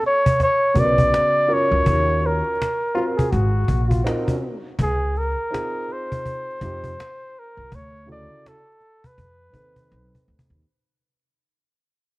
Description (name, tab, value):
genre	hip hop, jazz-hop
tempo	82 BPM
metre	4/4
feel	swing 60% on 16ths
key	unclear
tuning	A4 = 441 Hz
part	trumpet with bucket mute	melody	0.0-10.3 s	G#4 to D5	-21 LUFS	equal	none
part	cajon	drums	0.0-10.6 s	none	-23 LUFS	equal	none
part	dark grand piano	accompaniment	0.7-10.6 s	C#3 to B4	-27 LUFS	right 1 dB	none
part	upright bass	bass	0.8-10.6 s	G#1 to E#2	-23 LUFS	equal	none
part	warm trombone	second line	2.9-4.6 s	D#4 to G#4	-27 LUFS	left 2 dB	none
room	light reverb, small room ambience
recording	worn, warbling old tape, cassette tape, vinyl crackle, warbly pitch drift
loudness	-18 LUFS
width	side -21 dB against mid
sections	0.0-10.6 A section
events	fade-out 0.0-10.6; drum fill 9.9-10.6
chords	0.0 Gmaj7#11 (rootless); 1.9 D#m9; 3.3 G#13; 4.8 C#maj9; 7.7 Dmaj7; 9.2 F7#11